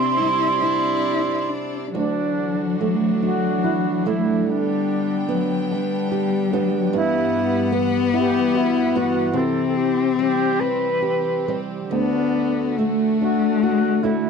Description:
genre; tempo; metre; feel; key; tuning
celtic folk, Celtic slow air; 45-50 BPM (dotted quarters); 6/8; rubato; D mixolydian; A4 = 440 Hz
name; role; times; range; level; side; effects
baroque flute; melody; 0.0-14.3 s; D4 to C6; -23 LUFS; right 3 dB; none
dark cello; second line; 0.0-14.3 s; F#3 to E4; -22 LUFS; left 10 dB; none
fingerpicked old ladder-braced acoustic guitar; accompaniment; 0.0-14.3 s; D2 to G4; -24 LUFS; right 8 dB; none
rich chamber string section; sustained chords; 0.0-14.3 s; G2 to G5; -30 LUFS; right 1 dB; none
room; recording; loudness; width
little or no reverb; dry, close 1970s-style studio recording; -18 LUFS; side -6 dB against mid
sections
0.0-1.9 A section; 1.9-14.3 B section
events
none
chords
0.0 Cadd9; 1.9 Dadd9; 4.5 G; 6.9 Emadd9/G; 9.3 C; 11.9 D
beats
0.61 | 1.94 3.23 | 4.47 5.71 | 6.93 8.13 | 9.34 10.59 | 11.91 13.20

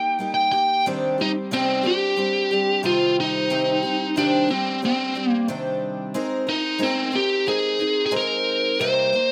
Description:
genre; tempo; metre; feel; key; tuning
rock; 91 BPM; 4/4; straight; C minor; A4 = 441 Hz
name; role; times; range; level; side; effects
biting lead guitar; melody; 0.0-9.3 s; C4 to G5; -23 LUFS; equal; overdrive
picked twelve-string acoustic guitar; accompaniment; 0.0-9.3 s; C3 to Bb4; -28 LUFS; equal; slapback echo
room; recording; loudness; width
little or no reverb; recorded outdoors, with no room sound; -22 LUFS; mono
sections
0.8-9.3 A section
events
none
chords
0.0 Eb; 0.8 Cmadd9; 6.1 Abadd9; 8.8 Cm7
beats
0.18 | 0.84 1.51 2.17 2.83 | 3.50 4.16 4.82 5.48 | 6.14 6.80 7.47 8.13 | 8.79

